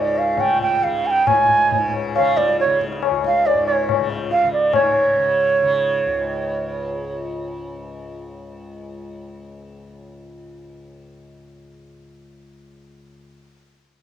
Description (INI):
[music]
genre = indian classical, Hindustani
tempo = 139 BPM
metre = 4/4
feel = straight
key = unclear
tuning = A4 = 440 Hz
[part]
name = hollow bansuri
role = melody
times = 0.0-7.2 s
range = Db5 to Ab5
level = -17 LUFS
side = right 3 dB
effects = cassette tape
[part]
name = tanpura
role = drone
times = 0.0-13.2 s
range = Db2 to Db3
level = -30 LUFS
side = left 2 dB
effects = none
[part]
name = tabla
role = percussion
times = 0.2-4.9 s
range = none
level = -22 LUFS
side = left 11 dB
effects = none
[sound]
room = wet spring reverb, RT60 1.7 s, small room ambience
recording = home recording on cassette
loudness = -16 LUFS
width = side -10 dB against mid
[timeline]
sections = 0.0-4.7 A section; 4.7-6.4 B section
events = speeding up 0.0-6.4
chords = none